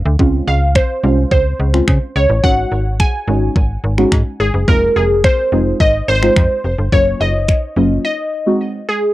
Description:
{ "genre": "dance-pop", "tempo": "107 BPM", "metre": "4/4", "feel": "straight", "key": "Db major", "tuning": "A4 = 439 Hz", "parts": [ { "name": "slap-like FM bass", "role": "bass", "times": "0.0-8.0 s", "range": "F1 to Db3", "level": "-16 LUFS", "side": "equal", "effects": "sidechain pumping" }, { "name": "deep mellow chord stab", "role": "accompaniment", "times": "0.2-8.8 s", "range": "Gb3 to Gb4", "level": "-17 LUFS", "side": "equal", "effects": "chorus, phaser, sidechain pumping, cassette tape" }, { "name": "pop drum kit", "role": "drums", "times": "0.2-7.6 s", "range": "finger snaps, kick drum", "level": "-14 LUFS", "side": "equal", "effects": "cassette tape" }, { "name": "glassy wavetable pluck", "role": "melody", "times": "0.5-9.1 s", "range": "Ab4 to Ab5", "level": "-16 LUFS", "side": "equal", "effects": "chorus, cassette tape" } ], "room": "light reverb", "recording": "home recording on cassette", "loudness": "-12 LUFS", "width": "side -16 dB against mid", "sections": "0.0-9.1 A section", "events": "break 8.0-9.1", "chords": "0.2 Dbmaj7; 2.4 Ab7sus4; 4.7 Fm7; 6.9 Gbmaj7; 8.0 Ab7" }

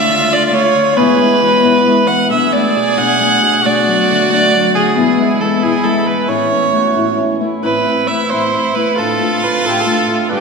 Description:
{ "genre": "mexican folk, mariachi", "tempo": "90 BPM (dotted quarters)", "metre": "6/8", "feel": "straight", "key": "A major", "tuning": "A4 = 440 Hz", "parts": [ { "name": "rich violin", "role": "melody", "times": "0.0-10.4 s", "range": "G4 to F#5", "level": "-14 LUFS", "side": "right 2 dB", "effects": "none" }, { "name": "clear trumpet", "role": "second line", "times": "0.0-10.4 s", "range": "C#4 to G#4", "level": "-20 LUFS", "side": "right 3 dB", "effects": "none" }, { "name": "nylon-string guitar", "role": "accompaniment", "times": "0.0-10.4 s", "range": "E2 to G4", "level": "-20 LUFS", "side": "left 2 dB", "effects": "none" }, { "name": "Celtic harp", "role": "arpeggios", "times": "0.0-10.4 s", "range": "A2 to B4", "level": "-17 LUFS", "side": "left 4 dB", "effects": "none" } ], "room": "wet church reverb, RT60 2.7 s", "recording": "recorded in a church or concert hall", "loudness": "-11 LUFS", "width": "side -4 dB against mid", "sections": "0.0-7.6 A section; 7.6-10.4 B section", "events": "none", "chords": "0.0 Dm; 1.0 E; 2.3 Bm7; 3.6 D; 5.0 E; 6.3 A; 7.6 Amadd9; 9.0 Dm/A" }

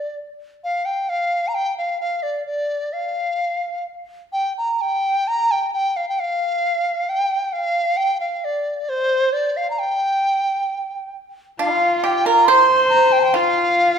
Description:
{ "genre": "chinese traditional, Chinese chamber ensemble", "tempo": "66 BPM", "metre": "2/4", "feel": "rubato", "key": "unclear", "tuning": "A4 = 439 Hz", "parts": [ { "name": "large dizi", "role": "melody", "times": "0.0-14.0 s", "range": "C5 to C6", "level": "-19 LUFS", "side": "equal", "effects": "none" }, { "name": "clear horsehead fiddle", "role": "second line", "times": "11.6-14.0 s", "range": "F4 to C5", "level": "-18 LUFS", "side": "left 2 dB", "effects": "none" }, { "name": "pipa", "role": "second line", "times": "11.6-14.0 s", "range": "F4 to C5", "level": "-20 LUFS", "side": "right 4 dB", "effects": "none" } ], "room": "wet recital hall reverb, RT60 1.4 s", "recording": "minimal, uncompressed stereo recording", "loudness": "-17 LUFS", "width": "side -7 dB against mid", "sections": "0.0-11.6 A section; 11.6-14.0 B section", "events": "none", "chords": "none" }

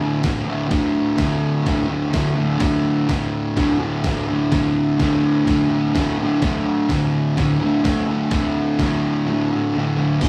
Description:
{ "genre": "garage rock duo or trio", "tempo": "127 BPM", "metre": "4/4", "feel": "straight", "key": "unclear", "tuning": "A4 = 438 Hz", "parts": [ { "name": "fuzz guitar", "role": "riff", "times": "0.0-10.3 s", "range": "D2 to D3", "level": "-20 LUFS", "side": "equal", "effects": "distortion" }, { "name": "trip hop sampler-style drum kit", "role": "drums", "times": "0.2-10.3 s", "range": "crash cymbal, hi-hat, kick drum, snare drum", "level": "-26 LUFS", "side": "equal", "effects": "none" } ], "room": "wet studio reverb, RT60 0.7 s", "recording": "band playing live in one room", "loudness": "-20 LUFS", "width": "mono", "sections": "0.0-10.2 A section", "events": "none", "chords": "0.0 D5" }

